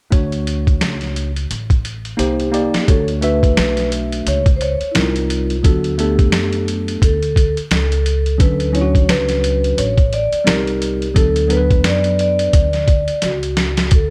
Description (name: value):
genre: hip hop, jazz-hop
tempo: 87 BPM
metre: 4/4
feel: swing 59% on 16ths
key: D major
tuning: A4 = 441 Hz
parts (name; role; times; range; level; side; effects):
- mellow tine electric piano; accompaniment; 0.1-12.7 s; F#3 to E5; -23 LUFS; equal; none
- upright bass; bass; 0.1-14.1 s; A1 to F#2; -23 LUFS; equal; none
- boom bap sampler-style drum kit; drums; 0.1-14.1 s; hi-hat, kick drum, snare drum; -19 LUFS; equal; none
- vibraphone with soft mallets; melody; 2.2-14.1 s; E4 to D5; -22 LUFS; equal; none
room: digital ambience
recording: none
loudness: -16 LUFS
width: mono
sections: 0.1-2.9 A section; 2.9-14.1 B section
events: drum fill 2.2-2.9, 13.2-13.9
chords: 0.1 Dmaj7; 2.2 Cm7; 2.9 Dmaj7; 5.0 Cm7; 5.6 Bm7/D; 8.4 Dmaj7; 10.5 Cm7; 11.2 Bm/D